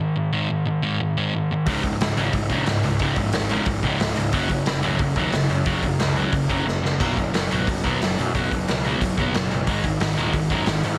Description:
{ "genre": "punk rock", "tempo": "180 BPM", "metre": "4/4", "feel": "straight", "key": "unclear", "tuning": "A4 = 440 Hz", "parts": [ { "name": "sludgy distorted guitar", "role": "riff", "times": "0.0-11.0 s", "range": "Db2 to Cb4", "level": "-26 LUFS", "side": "equal", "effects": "overdrive" }, { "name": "overdriven electric guitar", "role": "riff", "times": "1.7-11.0 s", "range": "Db2 to Cb4", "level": "-30 LUFS", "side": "equal", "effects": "none" }, { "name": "fuzz picked electric bass", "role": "bass", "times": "1.7-11.0 s", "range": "Db1 to Ab2", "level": "-30 LUFS", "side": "equal", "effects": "overdrive" }, { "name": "raw garage drum kit", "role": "drums", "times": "1.7-10.9 s", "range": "hi-hat, kick drum, snare drum, splash cymbal", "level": "-28 LUFS", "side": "equal", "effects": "none" } ], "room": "light reverb", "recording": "heavily compressed radio sound, multiband compression", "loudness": "-22 LUFS", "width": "mono", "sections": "0.0-11.0 A section", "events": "drum fill 6.7-7.0", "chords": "0.0 Ab5; 1.7 Db5; 4.3 Gb5; 7.0 Cb5; 9.7 Ab5" }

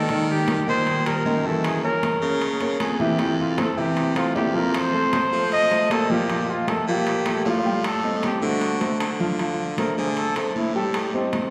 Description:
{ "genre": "Afro-Cuban jazz", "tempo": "155 BPM", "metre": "4/4", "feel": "straight", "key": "unclear", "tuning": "A4 = 440 Hz", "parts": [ { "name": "mellow trumpet", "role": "melody", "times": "0.0-11.3 s", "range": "C4 to Eb5", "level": "-27 LUFS", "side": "equal", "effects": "none" }, { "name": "warm grand piano", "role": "accompaniment", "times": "0.0-11.5 s", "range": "Eb3 to G5", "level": "-28 LUFS", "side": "equal", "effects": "none" }, { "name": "edgy baritone saxophone", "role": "bass", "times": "0.0-11.2 s", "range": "F2 to F3", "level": "-29 LUFS", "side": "equal", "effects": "none" }, { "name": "congas", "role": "percussion", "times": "0.1-11.5 s", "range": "none", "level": "-32 LUFS", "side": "equal", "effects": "none" }, { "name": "timbales", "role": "percussion", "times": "0.1-11.5 s", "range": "none", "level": "-34 LUFS", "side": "equal", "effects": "none" } ], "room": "wet concert hall reverb, RT60 2.6 s", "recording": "recorded in a church or concert hall", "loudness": "-23 LUFS", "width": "mono", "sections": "0.0-9.4 A section; 9.4-11.5 B section", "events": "drum fill 8.8-9.4; trumpet solo 9.4-11.5", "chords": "0.1 Eb6; 1.6 F#7; 3.2 Fmaj9; 4.7 F7; 6.3 Bb5; 7.8 Am7b5; 8.6 D7; 9.4 Dm7; 10.9 Am7b5" }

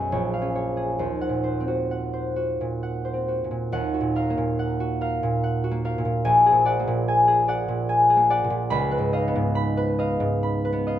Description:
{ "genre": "classical, solo harp piece", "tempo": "65-74 BPM", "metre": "3/4", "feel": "rubato", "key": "unclear", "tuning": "A4 = 439 Hz", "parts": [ { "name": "concert harp", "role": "solo", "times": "0.0-11.0 s", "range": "Bb1 to Cb6", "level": "-21 LUFS", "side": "equal", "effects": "none" } ], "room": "moderate studio reverb, RT60 0.5 s", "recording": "minimal, uncompressed stereo recording", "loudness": "-21 LUFS", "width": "side -11 dB against mid", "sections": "0.0-3.7 A section; 3.7-11.0 A section", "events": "none", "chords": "0.1 Bbm7; 1.0 Ebm6; 3.7 Ebmadd9; 6.2 Bbaug7; 8.7 Db9" }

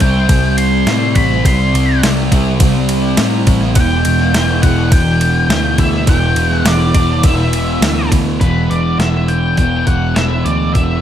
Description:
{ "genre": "rock, shoegaze and dream pop", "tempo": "104 BPM", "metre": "4/4", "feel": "straight", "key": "E minor", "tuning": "A4 = 442 Hz", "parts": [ { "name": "octave-fuzz lead guitar", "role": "melody", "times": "0.0-11.0 s", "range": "B4 to C6", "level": "-19 LUFS", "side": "left 1 dB", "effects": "distortion, slapback echo" }, { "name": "fuzz guitar", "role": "riff", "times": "0.0-11.0 s", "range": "E2 to C4", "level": "-16 LUFS", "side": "equal", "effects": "distortion, wide subtle chorus" }, { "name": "vintage muted picked electric bass", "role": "bass", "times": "0.0-11.0 s", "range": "E1 to A2", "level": "-16 LUFS", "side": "equal", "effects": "none" }, { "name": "crisp 8-bit digital drum machine", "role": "drums", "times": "0.0-10.9 s", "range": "hi-hat, kick drum, ride cymbal, snare drum", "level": "-16 LUFS", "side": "equal", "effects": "overdrive" } ], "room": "little or no reverb", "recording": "none", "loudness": "-11 LUFS", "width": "side -10 dB against mid", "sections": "0.0-8.4 A section; 8.4-11.0 B section", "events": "none", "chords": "0.0 C5; 3.8 Em7" }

